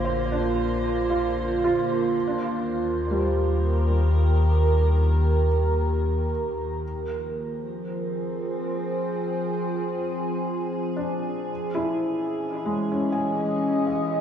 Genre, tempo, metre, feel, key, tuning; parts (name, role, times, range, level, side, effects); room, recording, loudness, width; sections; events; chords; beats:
ambient; 77 BPM; 3/4; straight; F dorian; A4 = 440 Hz
evolving wavetable pad; sustained chords; 0.0-14.2 s; D3 to Eb5; -26 LUFS; right 1 dB; chorus, built-in reverb, shimmer reverb
felt-muted upright piano; arpeggios; 0.0-6.8, 11.0-14.2 s; G3 to Ab5; -28 LUFS; right 1 dB; diffuse ambient delay, shimmer reverb
deep rumbling drone; bass; 0.0-6.8 s; Bb1 to Eb2; -23 LUFS; left 1 dB; built-in reverb
wet concert hall reverb, RT60 1.9 s, small room ambience; -22 LUFS; side -9 dB against mid
0.0-6.8 A section; 6.8-14.2 A section
0.0 Bbadd9; 2.1 Eb; 6.8 Fm; 11.5 Dbmadd9
0.59 1.37 | 2.15 2.93 3.71 | 4.49 5.27 6.04 | 6.82 7.60 8.38 | 9.16 9.94 10.72 | 11.50 12.28 13.06 | 13.84